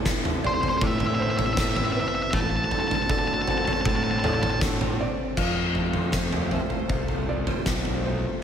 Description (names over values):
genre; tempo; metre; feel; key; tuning
post-rock; 79 BPM; 4/4; straight; unclear; A4 = 440 Hz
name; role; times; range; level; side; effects
clear studio string section; sustained chords; 0.0-8.4 s; C3 to C5; -36 LUFS; left 1 dB; none
electric guitar through a small old amp; arpeggios; 0.0-8.4 s; A2 to D4; -33 LUFS; left 3 dB; slapback echo
felt-muted upright piano; arpeggios; 0.0-8.4 s; A4 to F5; -36 LUFS; right 4 dB; slapback echo
oversized low-tuned drum kit; drums; 0.1-8.0 s; crash cymbal, kick drum, snare drum, toms; -26 LUFS; right 1 dB; none
octave-fuzz lead guitar; melody; 0.5-4.6 s; C5 to A5; -27 LUFS; equal; distortion, slapback echo
fuzz fingered electric bass; bass; 0.8-8.3 s; A1 to A2; -28 LUFS; equal; overdrive
room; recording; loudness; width
light reverb; none; -22 LUFS; side -8 dB against mid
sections
0.0-5.4 A section; 5.4-8.4 B section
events
none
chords
0.0 Amadd9; 2.3 D7/A; 5.4 Fmaj7